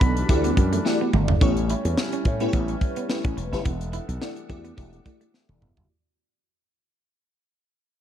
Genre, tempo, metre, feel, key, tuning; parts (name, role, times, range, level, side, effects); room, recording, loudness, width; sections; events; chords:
polished 1980s jazz-funk pop; 107 BPM; 4/4; swing 54% on 16ths; A4 = 442 Hz
breathy concert flute; melody; 0.0-0.9 s; B5; -34 LUFS; left 2 dB; ping-pong delay
bell-like FM electric piano; accompaniment; 0.0-5.9 s; A3 to D5; -28 LUFS; left 2 dB; ensemble chorus
warm woodwind section; sustained chords; 0.0-5.9 s; E3 to F#5; -34 LUFS; equal; stereo widening
semi-hollow electric guitar; riff; 0.0-5.7 s; A3 to E4; -32 LUFS; right 9 dB; lush chorus
slap bass with an envelope filter; bass; 0.0-5.9 s; E1 to A2; -25 LUFS; equal
tight funk drum kit; drums; 0.0-5.9 s; hi-hat, kick drum, snare drum, toms; -24 LUFS; equal
light reverb, small room ambience; dark, warm production; -21 LUFS; side -10 dB against mid
0.0-1.4 A section; 1.4-5.9 B section
drum fill 0.9-1.4, 5.3-5.9; fade-out 1.4-5.9
0.0 Em11/B; 1.4 A7; 3.7 Em11